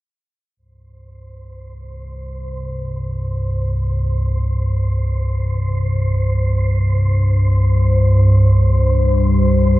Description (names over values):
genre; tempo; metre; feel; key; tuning
dark ambient drone; free time; none; none; unclear; A4 = 439 Hz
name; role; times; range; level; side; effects
analog drone; drone; 1.5-9.8 s; C2 to G2; -15 LUFS; equal; lush chorus
wind-like tuned noise texture; texture; 1.3-9.8 s; C5; -27 LUFS; left 1 dB; built-in reverb
room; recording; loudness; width
moderate huge ambient reverb, RT60 7.7 s; worn, warbling old tape, cassette tape, warbly pitch drift; -14 LUFS; side -17 dB against mid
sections
0.6-9.8 A section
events
fade-in on synth texture 0.6-9.8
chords
0.6 C5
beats
free time